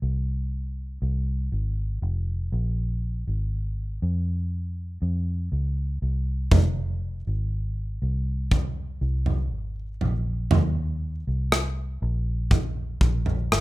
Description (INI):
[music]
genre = pop ballad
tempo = 60 BPM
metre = 4/4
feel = straight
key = F minor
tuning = A4 = 440 Hz
[part]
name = vintage muted fingered electric bass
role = bass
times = 0.0-13.6 s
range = F1 to F2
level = -26 LUFS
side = equal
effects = none
[part]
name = modern studio drum kit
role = drums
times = 6.5-13.6 s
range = kick drum, rim click, toms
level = -23 LUFS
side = right 1 dB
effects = none
[sound]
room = little or no reverb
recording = rough home demo mix, faint mains hum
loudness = -24 LUFS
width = side -18 dB against mid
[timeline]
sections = 0.0-13.6 A section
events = none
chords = none